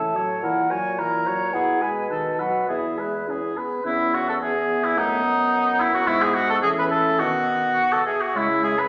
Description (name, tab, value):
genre	quick classical-period movement for wind quintet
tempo	107 BPM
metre	2/4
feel	rubato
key	E major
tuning	A4 = 440 Hz
part	concert flute	melody	0.0-8.7 s	D#5 to A#5	-30 LUFS	equal	none
part	warm oboe	second line	0.0-8.9 s	D#4 to E5	-24 LUFS	equal	none
part	mellow clarinet	accompaniment	0.0-8.8 s	G#3 to G#4	-33 LUFS	equal	none
part	warm French horn	accompaniment	0.0-8.1 s	D#3 to C#4	-36 LUFS	equal	none
part	dark bassoon	bass	0.0-8.8 s	E2 to C#3	-33 LUFS	equal	none
room	wet recital hall reverb, RT60 1.4 s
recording	none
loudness	-22 LUFS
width	mono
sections	0.0-3.9 A section; 3.9-8.9 B section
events	none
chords	0.4 F#7/A#; 1.5 E/B; 2.1 B7; 2.7 E; 3.9 E5; 5.0 B/F#; 6.1 E/G#; 6.6 A; 7.2 B; 8.3 C#m